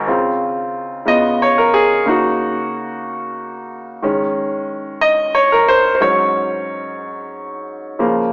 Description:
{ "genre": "gospel", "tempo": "61 BPM (dotted quarters)", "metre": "6/8", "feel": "straight", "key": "Db major", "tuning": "A4 = 439 Hz", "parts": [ { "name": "clear concert grand piano", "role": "solo", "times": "0.0-8.3 s", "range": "Ab2 to Eb5", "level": "-14 LUFS", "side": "equal", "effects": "none" } ], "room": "moderate scoring stage reverb, RT60 1.9 s", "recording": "small speaker sound", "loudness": "-14 LUFS", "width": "side -32 dB against mid", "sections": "0.1-8.3 A section", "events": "grand piano solo 0.1-8.3", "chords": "0.1 Dbmaj7; 1.1 Db7; 2.1 Gb6/Db; 4.0 Eb7sus4; 6.0 Ab7sus4" }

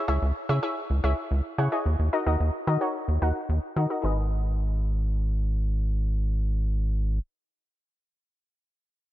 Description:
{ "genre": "synth-pop", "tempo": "110 BPM", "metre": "4/4", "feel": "straight", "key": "G# minor", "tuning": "A4 = 440 Hz", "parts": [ { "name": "analog pluck", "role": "accompaniment", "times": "0.0-7.2 s", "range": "D#4 to F#5", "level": "-28 LUFS", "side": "left 1 dB", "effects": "chorus, low-pass filter" }, { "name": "rubbery square bass", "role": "bass", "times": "0.1-7.2 s", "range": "G#1 to D#3", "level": "-24 LUFS", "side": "equal", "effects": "none" } ], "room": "light reverb", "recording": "none", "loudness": "-24 LUFS", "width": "side -14 dB against mid", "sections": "0.0-4.0 A section; 4.0-8.4 B section", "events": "filter sweep on synth pluck 0.0-4.0", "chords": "0.0 C#m; 1.9 D#m; 4.0 G#m" }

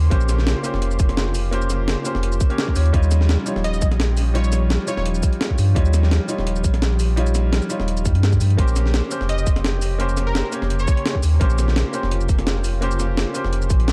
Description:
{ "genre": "liquid drum and bass", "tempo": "170 BPM", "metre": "4/4", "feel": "swing 53% on 16ths", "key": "Bb dorian", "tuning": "A4 = 440 Hz", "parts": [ { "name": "clear grand piano", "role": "accompaniment", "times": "0.0-13.9 s", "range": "G3 to Db5", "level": "-29 LUFS", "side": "equal", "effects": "vintage 12-bit sampler grit, digital delay" }, { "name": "airy breathy pad", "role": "sustained chords", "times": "0.0-13.9 s", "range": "Db3 to C6", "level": "-34 LUFS", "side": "equal", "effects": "chorus, sidechain pumping" }, { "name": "warm sub bass", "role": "bass", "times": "0.0-13.9 s", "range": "Eb1 to G2", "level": "-21 LUFS", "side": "equal", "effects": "tube saturation" }, { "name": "electronic kick drum", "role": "drums", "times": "0.1-13.8 s", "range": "none", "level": "-21 LUFS", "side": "equal", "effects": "none" }, { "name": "jungle sampler-style drum kit", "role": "drums", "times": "0.1-13.9 s", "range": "hi-hat, shaker, snare drum", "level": "-29 LUFS", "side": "equal", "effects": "none" }, { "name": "plucky unison lead", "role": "melody", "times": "3.6-5.0, 9.3-11.2 s", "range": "Bb4 to Eb5", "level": "-35 LUFS", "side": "equal", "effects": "lush chorus, cassette tape, dub echo" } ], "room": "little or no reverb", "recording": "dark, warm production", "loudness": "-20 LUFS", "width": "mono", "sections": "0.0-13.9 A section", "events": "none", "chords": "0.0 Bbm69; 2.9 Eb9; 8.6 Bbm69" }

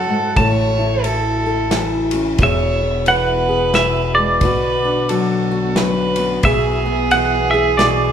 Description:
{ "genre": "acoustic folk duo or small band", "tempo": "89 BPM", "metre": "3/4", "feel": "swing 59% on 8ths", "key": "E mixolydian", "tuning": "A4 = 442 Hz", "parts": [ { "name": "clean electric guitar", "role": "melody", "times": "0.0-8.1 s", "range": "D5 to A5", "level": "-18 LUFS", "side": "right 2 dB", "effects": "tremolo" }, { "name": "warm fiddle", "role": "second line", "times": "0.0-8.1 s", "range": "G#4 to C#5", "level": "-20 LUFS", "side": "right 2 dB", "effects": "none" }, { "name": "fingerpicked steel-string acoustic guitar", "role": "accompaniment", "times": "0.0-8.1 s", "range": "E2 to A4", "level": "-20 LUFS", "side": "left 2 dB", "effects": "none" }, { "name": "rich studio string section", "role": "sustained chords", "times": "0.0-8.1 s", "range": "B2 to A4", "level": "-29 LUFS", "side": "equal", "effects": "none" }, { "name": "upright bass", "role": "bass", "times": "0.0-8.1 s", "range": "E1 to F#2", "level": "-23 LUFS", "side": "equal", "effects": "none" }, { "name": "loose indie drum kit", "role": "drums", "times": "0.4-8.0 s", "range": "kick drum, ride cymbal, snare drum", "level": "-23 LUFS", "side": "equal", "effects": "none" } ], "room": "wet large studio reverb, RT60 0.9 s", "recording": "band playing live in one room", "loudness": "-14 LUFS", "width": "side -8 dB against mid", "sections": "0.0-8.1 A section", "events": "none", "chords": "0.4 A; 2.4 E; 4.4 Bm; 6.4 E/B" }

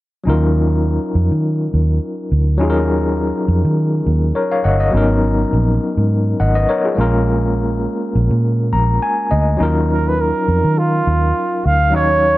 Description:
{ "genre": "lush 1970s-style soul", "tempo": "103 BPM", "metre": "4/4", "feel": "swing 54% on 16ths", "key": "Eb minor", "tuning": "A4 = 440 Hz", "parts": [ { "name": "overdriven tine electric piano", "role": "accompaniment", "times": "0.2-12.4 s", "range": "Gb3 to Bb5", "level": "-18 LUFS", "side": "left 2 dB", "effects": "fast tremolo" }, { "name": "vintage muted fingered electric bass", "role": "bass", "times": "0.3-12.4 s", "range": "G1 to Eb3", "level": "-16 LUFS", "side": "equal", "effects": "none" }, { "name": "breathy flugelhorn", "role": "melody", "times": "9.9-12.4 s", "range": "F4 to F5", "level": "-16 LUFS", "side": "right 2 dB", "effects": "none" } ], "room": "small room ambience", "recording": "none", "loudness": "-14 LUFS", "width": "side -17 dB against mid", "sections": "0.3-9.6 A section; 9.6-12.4 B section", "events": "tine electric piano fill 8.4-9.6", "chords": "0.3 Ebm9; 4.9 Abm11; 7.0 Bbm7; 9.6 Ebm9" }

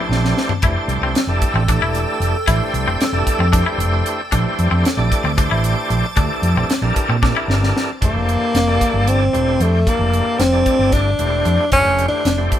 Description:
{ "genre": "electric jazz fusion", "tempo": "227 BPM (eighths)", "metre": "7/8", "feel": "straight", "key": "F major", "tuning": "A4 = 441 Hz", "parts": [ { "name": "overdriven tonewheel organ", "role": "accompaniment", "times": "0.0-12.6 s", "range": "D3 to D5", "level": "-22 LUFS", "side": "equal", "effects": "fast rotary speaker" }, { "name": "icy glass pad", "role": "sustained chords", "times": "0.0-8.0 s", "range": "A4 to E6", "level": "-28 LUFS", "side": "equal", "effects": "chorus, built-in reverb" }, { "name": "twangy electric guitar", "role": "stabs", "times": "0.0-7.6 s", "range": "C4 to E4", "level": "-23 LUFS", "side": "left 5 dB", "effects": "none" }, { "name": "mellow fretless electric bass", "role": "bass", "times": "0.1-12.5 s", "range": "E1 to Bb2", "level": "-19 LUFS", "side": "right 1 dB", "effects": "none" }, { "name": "crisp fusion drum kit", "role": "drums", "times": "0.1-12.6 s", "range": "hi-hat, kick drum, snare drum, toms", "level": "-20 LUFS", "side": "equal", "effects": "none" }, { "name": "mellow tenor saxophone", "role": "melody", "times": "8.1-12.5 s", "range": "A3 to D4", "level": "-17 LUFS", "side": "equal", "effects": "none" } ], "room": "moderate studio reverb, RT60 0.7 s", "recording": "band playing live in one room", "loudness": "-14 LUFS", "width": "side -11 dB against mid", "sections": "0.0-8.0 A section; 8.0-12.6 B section", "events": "drum fill 0.0-0.6, 7.2-8.0", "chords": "0.0 Bbmaj9; 0.6 Fmaj9; 4.3 Bbmaj9; 8.0 C9; 11.7 Fmaj9" }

